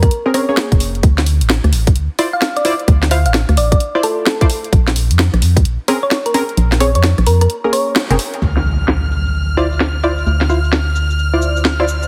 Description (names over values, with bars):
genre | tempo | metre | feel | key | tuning
UK garage, two-step garage | 130 BPM | 4/4 | swing 64% on 16ths | unclear | A4 = 441 Hz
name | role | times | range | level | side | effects
thumb-piano-like synth pluck | melody | 0.0-8.4 s | A4 to F5 | -22 LUFS | equal | chorus, delay
organ-like FM bass | bass | 0.0-12.1 s | F1 to F2 | -17 LUFS | equal | sidechain pumping
electronic kick drum | drums | 0.0-5.6 s | none | -14 LUFS | equal | none
garage drum kit | drums | 0.0-12.1 s | hi-hat, rim click, shaker, snare drum | -21 LUFS | equal | low-pass filter on snare, low-pass filter on hats, low-pass filter on perc
punchy chord stab | stabs | 0.3-11.8 s | Bb3 to F5 | -21 LUFS | equal | chorus, delay
rich chamber violin section | sustained chords | 8.4-12.1 s | F6 | -26 LUFS | equal | sidechain pumping
impact | sound effects | 8.4-10.3 s | none | -25 LUFS | equal | none
room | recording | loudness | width
light reverb | heavily compressed radio sound, multiband compression | -15 LUFS | mono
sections
0.0-8.4 A section; 8.4-12.1 B section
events
kick drops out 6.6-8.4; band accent 8.0; impact 8.4-10.3; filter sweep on drum 8.4-12.1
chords
0.0 Bbm9; 1.0 Dm9; 4.7 Bbm9; 8.4 Dm9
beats
0.11 0.57 | 1.03 1.50 1.96 2.42 | 2.88 3.34 3.80 4.27 | 4.73 5.19 5.65 6.11 | 6.57 7.04 7.50 7.96 | 8.42 8.88 9.34 9.80 | 10.27 10.73 11.19 11.65